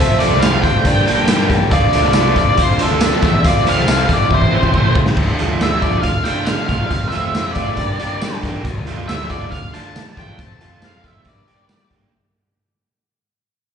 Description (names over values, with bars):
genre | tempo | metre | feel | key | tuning
indie rock | 138 BPM | 4/4 | straight | D minor | A4 = 440 Hz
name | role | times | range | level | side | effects
octave-fuzz lead guitar | melody | 0.0-11.9 s | A4 to A5 | -20 LUFS | equal | distortion, slapback echo
soft synth bell | second line | 0.0-4.9 s | C5 to F5 | -26 LUFS | right 2 dB | chorus, slapback echo
analog string pad | sustained chords | 0.0-5.2 s | Bb2 to A4 | -28 LUFS | equal | none
raw garage guitar | riff | 0.0-12.1 s | E3 to G4 | -24 LUFS | left 6 dB | overdrive, slapback echo
fuzz picked electric bass | bass | 0.0-12.0 s | A1 to G3 | -21 LUFS | equal | overdrive
crunchy overdriven guitar | riff | 0.2-12.1 s | E3 to G4 | -24 LUFS | right 8 dB | analog chorus, slapback echo
raw garage drum kit | drums | 0.2-12.0 s | crash cymbal, hi-hat, kick drum, snare drum, tambourine | -18 LUFS | equal | none
room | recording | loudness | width
light reverb, small room ambience | live gig heard through the venue's PA, club reverb, nothing above 10.3 kHz | -13 LUFS | side -7 dB against mid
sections
0.0-5.2 A section; 5.2-12.1 B section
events
drum fill 4.3-5.2; fade-out 5.2-12.1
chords
0.0 Dm7; 0.9 Gmadd9; 1.7 Dm7; 3.4 F6; 4.3 Am7; 5.2 Dm; 6.9 F; 7.8 Gm; 8.6 Dm; 10.4 F; 11.2 Gm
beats
0.42 0.86 1.29 | 1.72 2.15 2.58 3.02 | 3.45 3.88 4.31 4.74 | 5.17 5.61 6.04 6.47 | 6.91 7.34 7.78 8.21 | 8.64 9.08 9.51 9.94 | 10.38 10.81 11.25 11.68